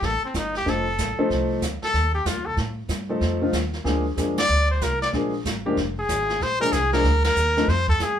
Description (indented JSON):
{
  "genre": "jazz, small-group swing and bop",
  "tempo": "188 BPM",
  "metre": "4/4",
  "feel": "swing 64% on 8ths",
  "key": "F mixolydian",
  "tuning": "A4 = 440 Hz",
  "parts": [
    { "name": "bright trumpet", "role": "melody", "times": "0.0-8.2 s", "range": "C4 to D5", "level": "-23 LUFS", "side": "left 1 dB", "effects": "none" },
    { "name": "upright bass", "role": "bass", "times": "0.0-8.2 s", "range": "F1 to A2", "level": "-26 LUFS", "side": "right 1 dB", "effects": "none" },
    { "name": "jazz brush drum kit", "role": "drums", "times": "0.0-8.2 s", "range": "brushed snare drum, hi-hat, kick drum, ride cymbal, snare drum", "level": "-28 LUFS", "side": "right 1 dB", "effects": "none" },
    { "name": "warm baby grand piano", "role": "accompaniment", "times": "0.7-7.7 s", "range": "F3 to A4", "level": "-24 LUFS", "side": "left 2 dB", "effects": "none" }
  ],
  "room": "moderate studio ambience, RT60 0.5 s",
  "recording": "band playing live in one room",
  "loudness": "-20 LUFS",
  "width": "side -9 dB against mid",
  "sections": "0.0-8.2 A section",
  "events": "band accent 4.3, 7.2",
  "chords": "0.0 F7; 3.9 Bb7; 7.7 F"
}